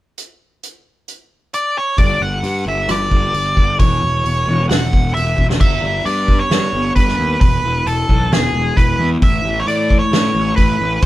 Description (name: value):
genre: quiet-loud alternative rock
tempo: 133 BPM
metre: 4/4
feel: straight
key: G lydian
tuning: A4 = 438 Hz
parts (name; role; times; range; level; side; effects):
- loose indie drum kit; drums; 0.2-11.1 s; crash cymbal, hi-hat, kick drum, rim click, snare drum; -16 LUFS; equal; none
- nasal lead guitar with a parked wah; melody; 1.5-11.1 s; G#4 to F#5; -18 LUFS; equal; overdrive
- fingerpicked steel-string acoustic guitar; arpeggios; 2.0-11.1 s; E2 to D4; -24 LUFS; left 2 dB; none
- fuzz picked electric bass; bass; 2.0-11.1 s; E1 to A2; -20 LUFS; equal; overdrive
room: light reverb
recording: band playing live in one room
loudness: -13 LUFS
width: side -15 dB against mid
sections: 0.2-2.0 A section; 2.0-5.6 B section; 5.6-11.1 C section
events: drum fill 5.4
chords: 0.2 N.C.; 2.0 G5; 3.8 E5; 5.6 G; 7.4 E; 9.2 A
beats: | 0.18 0.63 1.08 1.53 | 1.99 2.44 2.89 3.34 | 3.79 4.25 4.70 5.15 | 5.60 6.05 6.50 6.96 | 7.41 7.86 8.31 8.76 | 9.22 9.67 10.12 10.57 | 11.03